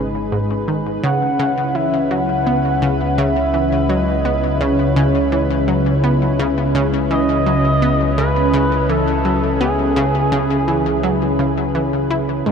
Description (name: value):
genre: ambient, sequencer-driven space music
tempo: 84 BPM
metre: 4/4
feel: straight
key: unclear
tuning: A4 = 441 Hz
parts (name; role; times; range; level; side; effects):
- lush unison pad; sustained chords; 0.0-12.5 s; C#3 to B4; -19 LUFS; equal; chorus
- analog pluck; riff; 0.0-12.5 s; G#2 to E4; -21 LUFS; equal; chorus, ping-pong delay
- fat analog bass; bass; 0.0-12.5 s; G#1 to C#2; -22 LUFS; equal; none
- expressive synth lead; melody; 1.0-11.7 s; G#4 to F#5; -21 LUFS; equal; chorus, ping-pong delay
room: wet huge ambient reverb, RT60 8.4 s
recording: dark, warm production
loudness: -15 LUFS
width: side -6 dB against mid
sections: 0.0-12.5 A section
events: none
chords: 0.0 G#m; 1.0 C#m7